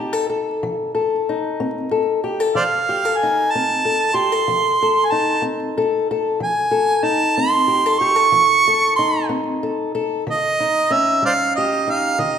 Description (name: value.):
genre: acoustic country blues, solo or duo.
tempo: 62 BPM (dotted quarters).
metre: 12/8.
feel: straight.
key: unclear.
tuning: A4 = 441 Hz.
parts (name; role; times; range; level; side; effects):
fingerpicked old ladder-braced acoustic guitar; accompaniment; 0.0-12.4 s; Eb3 to A4; -21 LUFS; left 4 dB; none.
warm harmonica; melody; 2.6-12.4 s; C5 to Db6; -16 LUFS; right 3 dB; none.
room: wet recital hall reverb, RT60 1.6 s.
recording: recorded in a church or concert hall, vinyl crackle.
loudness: -16 LUFS.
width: side -8 dB against mid.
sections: 0.0-12.4 A section.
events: none.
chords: 0.0 F7; 10.3 Eb7.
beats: 0.62 1.59 | 2.56 3.52 4.49 5.45 | 6.41 7.38 8.34 9.31 | 10.27 11.23 12.20.